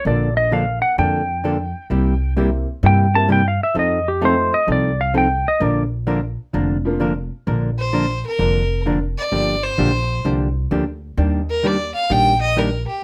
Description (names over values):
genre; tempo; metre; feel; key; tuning
country, western swing; 130 BPM; 4/4; swing 67% on 8ths; Bb major; A4 = 440 Hz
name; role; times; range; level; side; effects
clean lap steel guitar; melody; 0.0-5.8 s; G4 to A5; -21 LUFS; equal; none
clear upright piano; accompaniment; 0.1-7.0 s; F3 to Bb4; -28 LUFS; equal; none
hollow-body jazz guitar; accompaniment; 0.1-12.7 s; C3 to Bb4; -23 LUFS; equal; none
upright bass; bass; 0.1-12.8 s; F1 to G2; -23 LUFS; equal; none
clear fiddle; second line; 7.8-13.0 s; G4 to G5; -23 LUFS; equal; none
room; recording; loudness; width
moderate studio ambience, RT60 0.5 s; none; -19 LUFS; mono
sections
0.0-7.5 A section; 7.5-13.0 A section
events
electric slide guitar solo 0.0-7.5; fiddle solo 7.5-13.0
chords
0.1 Bbmaj7; 1.9 C7; 3.8 F7; 5.6 Bb; 9.3 Gm7; 11.2 Ebmaj7